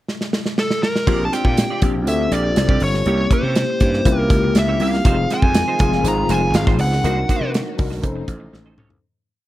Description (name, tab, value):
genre	polished 1980s jazz-funk pop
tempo	121 BPM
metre	4/4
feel	straight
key	Bb minor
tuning	A4 = 440 Hz
part	modern studio drum kit	drums	0.1-9.0 s	crash cymbal, hi-hat, kick drum, snare drum, toms	-19 LUFS	equal	none
part	fuzz lead guitar	melody	0.6-7.5 s	A4 to Bb5	-22 LUFS	equal	distortion, plate reverb
part	mellow tine electric piano	accompaniment	1.1-9.1 s	Bb3 to C5	-23 LUFS	left 3 dB	medium stereo tremolo, analog chorus, plate reverb
part	clean electric guitar	riff	1.1-8.9 s	Ab3 to E5	-28 LUFS	right 6 dB	ensemble chorus
part	gritty slap bass	bass	1.1-9.0 s	F1 to C3	-21 LUFS	equal	overdrive
part	dark studio string section	sustained chords	5.0-9.0 s	Db3 to C5	-30 LUFS	right 1 dB	plate reverb
room	light reverb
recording	none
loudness	-15 LUFS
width	side -15 dB against mid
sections	0.0-1.1 pickup bar; 1.1-9.0 pre-chorus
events	drum fill 0.1-1.1, 8.5-9.0; fade-out 7.0-9.0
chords	0.0 N.C.; 1.1 Bb69; 3.1 C7b9; 5.1 Fm7; 7.0 Cm7b5; 8.0 F7b13